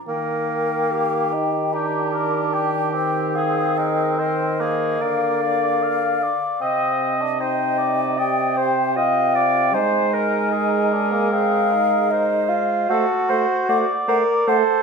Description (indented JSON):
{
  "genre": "classical, slow romantic movement for wind quintet",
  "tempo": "76 BPM",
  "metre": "4/4",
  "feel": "rubato",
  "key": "Eb major",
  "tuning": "A4 = 440 Hz",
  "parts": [
    { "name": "mellow hollow concert flute", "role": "melody", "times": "0.0-14.6 s", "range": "Eb5 to Bb5", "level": "-24 LUFS", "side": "left 8 dB", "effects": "none" },
    { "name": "bright clarinet", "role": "accompaniment", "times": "0.1-14.6 s", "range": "G4 to Eb5", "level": "-26 LUFS", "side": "right 9 dB", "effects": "none" },
    { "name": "mellow French horn", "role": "accompaniment", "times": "0.1-14.6 s", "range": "C3 to A3", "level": "-26 LUFS", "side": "right 2 dB", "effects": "none" },
    { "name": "warm bassoon", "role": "bass", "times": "0.1-14.8 s", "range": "Bb3 to Bb4", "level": "-23 LUFS", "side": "right 2 dB", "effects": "none" },
    { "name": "mellow oboe", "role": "second line", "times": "1.7-14.8 s", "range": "G4 to F5", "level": "-25 LUFS", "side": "left 2 dB", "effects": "none" }
  ],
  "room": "moderate recital hall reverb, RT60 1.5 s",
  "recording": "minimal, uncompressed stereo recording",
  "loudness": "-18 LUFS",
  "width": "side -5 dB against mid",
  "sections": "0.1-14.8 A section",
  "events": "none",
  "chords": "0.1 Eb; 3.4 Fm7/Eb; 5.0 Bb/D; 6.6 Cm; 9.7 Fm7/Ab; 12.9 Am6",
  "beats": "| 0.08 0.91 1.73 2.53 | 3.35 4.19 5.01 5.82 | 6.62 7.40 8.18 8.97 | 9.74 10.53 11.32 12.11 | 12.89 13.69 14.48"
}